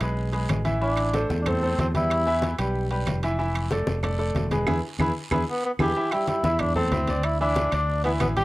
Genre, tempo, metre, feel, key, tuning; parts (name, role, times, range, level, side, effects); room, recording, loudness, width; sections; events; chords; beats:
latin, salsa; 187 BPM; 4/4; straight; A minor; A4 = 440 Hz
bright baby grand piano; accompaniment; 0.0-8.4 s; E3 to E6; -28 LUFS; equal; plate reverb
fretless electric bass; bass; 0.0-8.4 s; E1 to E2; -26 LUFS; equal
claves; percussion; 0.0-8.4 s; -36 LUFS; right 5 dB
congas; percussion; 0.0-8.4 s; -30 LUFS; left 2 dB
guiro; percussion; 0.0-8.4 s; -43 LUFS; right 4 dB
timbales; percussion; 0.0-8.4 s; -35 LUFS; right 5 dB
breathy tenor saxophone; melody; 0.8-2.6, 5.5-8.4 s; B3 to G4; -25 LUFS; equal; cassette tape, plate reverb
moderate small room reverb, RT60 0.6 s; home recording on cassette; -22 LUFS; side -19 dB against mid
0.0-6.0 A section; 6.0-8.4 B section
band accent 4.7-6.0; drum fill 5.0-6.0
0.0 E; 0.8 Am; 2.1 Em; 3.4 Dmadd9/F; 4.7 E; 6.0 Am7; 7.2 A5
0.17 0.50 | 0.82 1.14 1.46 1.78 | 2.10 2.42 2.75 3.07 | 3.39 3.71 4.03 4.35 | 4.67 5.00 5.32 5.64 | 5.96 6.28 6.60 6.92 | 7.25 7.57 7.89 8.21